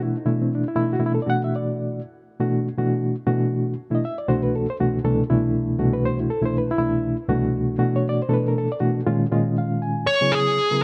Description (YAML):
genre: jazz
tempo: 119 BPM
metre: 4/4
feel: straight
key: unclear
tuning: A4 = 441 Hz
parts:
  - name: reed electric piano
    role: accompaniment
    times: 0.0-10.8 s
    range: C2 to G#5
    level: -23 LUFS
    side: equal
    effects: fast tremolo
  - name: dark smooth lead guitar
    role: melody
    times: 10.1-10.8 s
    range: G#4 to C#5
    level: -20 LUFS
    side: equal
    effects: overdrive
room: moderate plate reverb, RT60 2.9 s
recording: dark, warm production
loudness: -22 LUFS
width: mono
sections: 0.0-10.1 A section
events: reed electric piano fill 9.1-10.1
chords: 0.0 Bm7; 4.0 Am69/C; 7.8 Bm7; 9.1 C#69; 10.1 F#9sus4/C#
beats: | 0.01 0.51 1.02 1.52 | 2.02 2.53 3.03 3.53 | 4.04 4.54 5.04 5.55 | 6.05 6.55 7.06 7.56 | 8.06 8.57 9.07 9.58 | 10.08 10.59